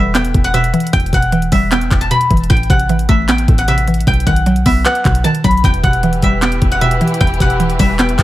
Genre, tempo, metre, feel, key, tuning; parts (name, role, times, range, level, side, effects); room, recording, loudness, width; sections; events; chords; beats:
hip hop, trap; 153 BPM; 4/4; half-time; E harmonic minor; A4 = 440 Hz
guzheng; melody; 0.0-8.2 s; E4 to B5; -17 LUFS; left 1 dB; tape echo
mallet-like synth pluck; accompaniment; 0.0-8.2 s; E2 to B4; -16 LUFS; equal; chorus
warm 808-style bass; bass; 0.0-8.2 s; E1 to B1; -17 LUFS; equal
trap drum kit; drums; 0.1-8.2 s; handclaps, hi-hat, kick drum; -16 LUFS; equal
dark symphonic string section; sustained chords; 5.6-8.2 s; E3 to B4; -22 LUFS; left 1 dB
digital ambience; vinyl crackle; -11 LUFS; side -15 dB against mid
0.0-8.2 A section
0.0 Em; 2.5 Amadd9; 4.1 B; 5.6 Em
0.15 0.54 | 0.93 1.32 1.72 2.11 | 2.50 2.89 3.29 3.68 | 4.07 4.46 4.85 5.25 | 5.64 6.03 6.42 6.82 | 7.21 7.60 7.99